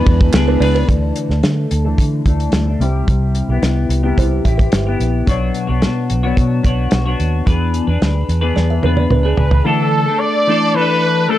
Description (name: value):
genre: indie pop, bedroom pop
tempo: 110 BPM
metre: 4/4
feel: straight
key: D lydian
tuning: A4 = 440 Hz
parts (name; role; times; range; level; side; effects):
- clean electric guitar; accompaniment; 0.0-11.4 s; B2 to C#5; -19 LUFS; left 4 dB; analog chorus, vibrato effect, low-pass filter
- mellow tonewheel organ; accompaniment; 0.0-0.9 s; G#3 to B4; -22 LUFS; right 9 dB; slow rotary speaker, cassette tape
- vintage muted fingered electric bass; bass; 0.1-9.6 s; G1 to D3; -16 LUFS; equal; none
- damped 70s drum kit; drums; 0.1-9.6 s; hi-hat, kick drum, ride cymbal, snare drum, toms; -16 LUFS; equal; none
- group handclap; percussion; 0.3-0.5 s; none; -30 LUFS; right 4 dB; none
- kalimba; second line; 0.5-5.2, 8.6-9.6 s; B3 to E5; -25 LUFS; right 8 dB; analog chorus, analog delay
- clear trumpet; melody; 9.4-11.4 s; A4 to D5; -16 LUFS; equal; ensemble chorus, analog delay
room: small room ambience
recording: dry, gritty hardware recording, cassette tape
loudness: -13 LUFS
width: side -13 dB against mid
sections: 0.9-9.7 A section; 9.7-11.4 B section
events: filter sweep on clean electric guitar 0.9-9.7; drum fill 8.6-9.7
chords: 0.0 E7; 0.9 Dsus2; 2.8 Cmaj7; 5.3 Bmadd9; 7.5 E7; 9.7 Dsus2